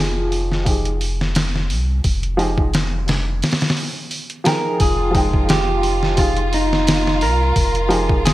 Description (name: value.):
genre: trip hop.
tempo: 87 BPM.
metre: 4/4.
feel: swing 55% on 16ths.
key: F minor.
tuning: A4 = 440 Hz.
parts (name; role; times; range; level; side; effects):
dark upright piano; accompaniment; 0.0-8.1 s; F3 to G5; -22 LUFS; equal; tremolo, tape echo.
soft dub sub bass; bass; 0.0-8.3 s; F1 to C2; -21 LUFS; equal; none.
trip hop sampler-style drum kit; drums; 0.3-8.3 s; hi-hat, kick drum, snare drum; -20 LUFS; equal; none.
electric guitar at the edge of break-up; melody; 4.5-8.3 s; Eb4 to Bb4; -20 LUFS; right 1 dB; tape echo.
rich chamber violin section; sustained chords; 4.8-8.3 s; F4; -26 LUFS; equal; none.
room: light reverb, digital ambience.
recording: bright 1980s-style digital production.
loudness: -16 LUFS.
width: side -16 dB against mid.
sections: 0.0-4.8 A section; 4.8-8.3 B section.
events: none.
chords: 0.0 Fm9.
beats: 0.67 1.35 | 2.04 2.73 3.42 4.11 | 4.80 5.49 6.18 6.87 | 7.56 8.25.